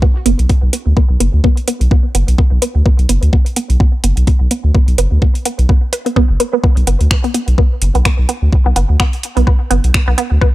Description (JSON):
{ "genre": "minimal techno", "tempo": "127 BPM", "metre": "4/4", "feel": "swing 57% on 16ths", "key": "B minor", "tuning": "A4 = 440 Hz", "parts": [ { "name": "resonant blip pluck", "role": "riff", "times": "0.0-10.4 s", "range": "B3 to B4", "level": "-19 LUFS", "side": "right 1 dB", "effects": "phaser, sidechain pumping, tape echo" }, { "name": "electronic kick drum", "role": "drums", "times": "0.0-10.5 s", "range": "none", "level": "-12 LUFS", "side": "equal", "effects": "overdrive" }, { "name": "saturated sub bass", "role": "bass", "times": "0.3-10.4 s", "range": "F#1 to D2", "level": "-12 LUFS", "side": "equal", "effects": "tube saturation, sidechain pumping" }, { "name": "garage drum kit", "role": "drums", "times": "0.3-10.3 s", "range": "finger snaps, hi-hat", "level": "-20 LUFS", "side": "right 1 dB", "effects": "overdrive" } ], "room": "little or no reverb", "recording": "dry, gritty hardware recording, transformer saturation", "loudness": "-11 LUFS", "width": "side -16 dB against mid", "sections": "0.0-10.5 A section", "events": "filter sweep on synth arpeggio sound 0.0-10.5", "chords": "none" }